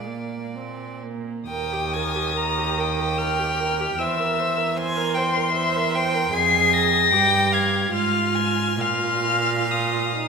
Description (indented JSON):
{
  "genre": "classical, slow romantic movement for string quartet",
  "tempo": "61-78 BPM",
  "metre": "3/4",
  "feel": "rubato",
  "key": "Eb major",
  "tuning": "A4 = 441 Hz",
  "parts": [
    { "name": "dark violin", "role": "melody", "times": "0.0-10.3 s", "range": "F5 to C7", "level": "-22 LUFS", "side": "left 7 dB", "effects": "none" },
    { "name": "rich violin", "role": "second line", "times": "0.0-10.3 s", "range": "D5 to Bb5", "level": "-26 LUFS", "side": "right 1 dB", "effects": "none" },
    { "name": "rich viola", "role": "accompaniment", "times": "0.0-10.3 s", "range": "Bb3 to C5", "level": "-28 LUFS", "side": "right 5 dB", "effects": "none" },
    { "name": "rich cello", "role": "bass", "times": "0.0-10.3 s", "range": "Eb2 to Bb2", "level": "-27 LUFS", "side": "right 5 dB", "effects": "none" }
  ],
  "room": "wet concert hall reverb, RT60 2.2 s",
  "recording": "minimal, uncompressed stereo recording",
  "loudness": "-19 LUFS",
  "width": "side -5 dB against mid",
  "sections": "0.0-1.5 A section; 1.5-10.3 B section",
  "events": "none",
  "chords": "0.0 Bb; 1.5 Eb; 4.0 C7/E; 6.3 Fm; 7.9 Fm/Ab; 8.8 Bbsus4"
}